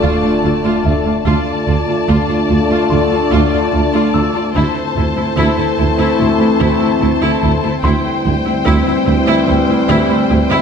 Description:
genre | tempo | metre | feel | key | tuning
cinematic, hybrid orchestral and electronic film score | 73 BPM | 4/4 | straight | D minor | A4 = 439 Hz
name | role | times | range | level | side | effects
dark symphonic violin section | melody | 0.0-10.6 s | G5 to A5 | -23 LUFS | left 8 dB | none
rich studio violin section | second line | 0.0-10.6 s | C5 to D5 | -23 LUFS | left 4 dB | none
warm symphonic viola section | accompaniment | 0.0-10.6 s | E4 to F4 | -22 LUFS | right 1 dB | none
analog drone | sustained chords | 0.0-10.6 s | G3 to C5 | -21 LUFS | equal | chorus
clear trombone section | sustained chords | 0.0-10.6 s | D3 to A3 | -22 LUFS | right 4 dB | none
warm French horn section | sustained chords | 0.0-10.6 s | C4 to F4 | -21 LUFS | left 7 dB | none
mellow tuba | bass | 0.0-10.4 s | D2 | -21 LUFS | right 3 dB | none
rich symphonic cello section | bass | 0.0-10.6 s | D2 | -20 LUFS | right 2 dB | none
rich symphonic double bass section | bass | 0.0-10.4 s | D2 | -20 LUFS | right 2 dB | none
sub drop | sound effects | 0.0-1.3 s | none | -38 LUFS | left 1 dB | none
warm concert grand piano | texture | 0.0-10.6 s | C5 to E6 | -27 LUFS | left 2 dB | digital delay
room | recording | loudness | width
wet scoring stage reverb, RT60 1.5 s | dark, warm production | -12 LUFS | side -7 dB against mid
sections
0.0-10.6 A section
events
impact 0.0-1.3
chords
0.0 Dm; 4.6 Am/D; 7.8 C/D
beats
0.44 | 1.26 2.09 2.91 3.73 | 4.55 5.38 6.20 7.02 | 7.84 8.66 9.48 10.31

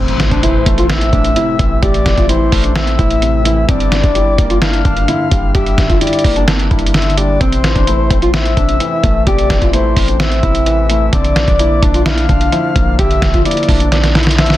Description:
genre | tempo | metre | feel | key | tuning
hip hop, trap | 129 BPM | 4/4 | half-time | A phrygian | A4 = 439 Hz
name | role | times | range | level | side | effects
nylon-string guitar | melody | 0.0-14.6 s | C4 to G4 | -19 LUFS | right 1 dB | low-pass filter, ping-pong delay
breathy flute-like synth lead | second line | 0.0-14.6 s | C5 to F5 | -18 LUFS | left 3 dB | chorus, tremolo, ping-pong delay
felt-muted upright piano | accompaniment | 0.0-14.6 s | G2 to D5 | -20 LUFS | left 2 dB | low-pass filter
warm 808-style bass | bass | 0.0-14.6 s | G1 to Bb1 | -15 LUFS | equal | none
impact | sound effects | 0.0-1.8 s | none | -24 LUFS | equal | none
lo-fi sampler-style drum kit | drums | 0.1-14.6 s | hi-hat, kick drum, snare drum | -15 LUFS | equal | none
room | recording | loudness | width
light reverb | dense, heavily limited modern master | -10 LUFS | side -14 dB against mid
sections
0.0-14.6 A section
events
impact 0.0-1.8; drum fill 13.9-14.6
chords
0.0 Am; 3.7 Gm; 7.4 Am; 11.1 Bb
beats
0.43 0.90 1.36 | 1.83 2.29 2.76 3.22 | 3.69 4.15 4.62 5.08 | 5.55 6.01 6.48 6.94 | 7.41 7.87 8.34 8.80 | 9.27 9.73 10.20 10.66 | 11.13 11.59 12.06 12.52 | 12.99 13.45 13.92 14.38

